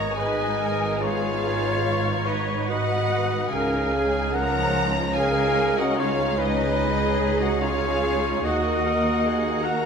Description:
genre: cinematic.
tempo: 73 BPM.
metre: 3/4.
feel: rubato.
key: unclear.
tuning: A4 = 439 Hz.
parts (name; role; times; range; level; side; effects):
clear symphonic violin section; melody; 0.0-9.9 s; Eb5 to Bb5; -30 LUFS; left 2 dB; none.
rich symphonic violin section; second line; 0.0-9.9 s; Bb3 to Eb4; -30 LUFS; left 1 dB; none.
silver concert flute; second line; 0.0-9.9 s; Cb5 to Gb5; -29 LUFS; left 3 dB; none.
warm clarinet; second line; 0.0-9.9 s; Eb4 to Bb4; -30 LUFS; equal; none.
warm oboe; second line; 0.0-9.9 s; Cb5 to Gb5; -31 LUFS; right 1 dB; none.
clear symphonic viola section; accompaniment; 0.0-9.9 s; F3 to Db5; -29 LUFS; equal; none.
rich symphonic cello section; bass; 0.0-9.9 s; Db2 to Ab2; -30 LUFS; right 2 dB; none.
rich symphonic double bass section; bass; 0.0-9.9 s; Ab1 to Eb2; -30 LUFS; right 4 dB; none.
room: wet scoring stage reverb, RT60 1.6 s.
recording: minimal, uncompressed stereo recording.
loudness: -21 LUFS.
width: side -6 dB against mid.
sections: 0.0-9.9 A section.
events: none.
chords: 0.0 Abm; 3.5 Dbadd9; 8.4 Ebm.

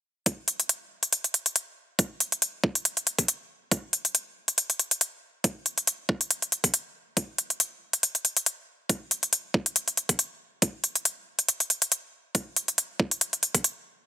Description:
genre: heavy wobble dubstep.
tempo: 139 BPM.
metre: 4/4.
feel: swing 55% on 16ths, half-time.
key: none.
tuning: none.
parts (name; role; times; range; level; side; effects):
electronic hi-hat; drums; 0.3-13.7 s; none; -23 LUFS; left 1 dB; overdrive.
electronic kick drum; drums; 0.3-13.6 s; none; -25 LUFS; right 1 dB; high-pass filter on kick.
room: little or no reverb.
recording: dense, heavily limited modern master.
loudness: -24 LUFS.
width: side -10 dB against mid.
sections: 0.3-14.1 A section.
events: break 13.6-14.1.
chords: none.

